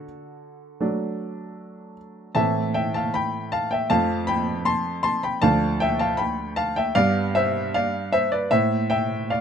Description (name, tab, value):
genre	classical-period piano sonatina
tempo	78 BPM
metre	4/4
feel	straight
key	unclear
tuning	A4 = 439 Hz
part	clear baby grand piano	solo	0.0-9.4 s	D2 to C6	-21 LUFS	equal	none
room	light reverb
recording	close, detailed microphones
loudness	-21 LUFS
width	side -7 dB against mid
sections	0.0-9.4 A section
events	none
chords	0.0 D; 2.4 Am; 3.9 F; 5.4 Dm; 7.0 G; 8.5 Am